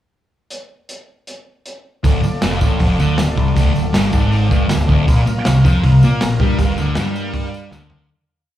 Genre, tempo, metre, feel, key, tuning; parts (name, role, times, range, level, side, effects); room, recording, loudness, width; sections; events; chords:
garage rock duo or trio; 159 BPM; 4/4; straight; D minor; A4 = 444 Hz
crunchy breakbeat drum kit; drums; 0.5-8.0 s; hi-hat, kick drum, snare drum, toms; -19 LUFS; equal
overdriven combo organ; sustained chords; 2.0-8.1 s; F4 to A5; -28 LUFS; left 1 dB; lush chorus
thick fuzz guitar; riff; 2.0-8.1 s; D2 to Bb3; -16 LUFS; equal; distortion, slapback echo
growling picked electric bass; bass; 2.0-8.1 s; D1 to Bb2; -19 LUFS; equal; overdrive
tambourine; percussion; 2.0-8.0 s; -38 LUFS; right 1 dB
little or no reverb; live gig heard through the venue's PA, club reverb; -13 LUFS; side -12 dB against mid
0.5-2.0 pickup bar; 2.0-8.1 riff
transistor combo organ fill 4.0-5.1; fade-out 6.6-8.1; drum fill 7.7-8.1
0.5 N.C.; 2.0 Dm; 5.1 Bb5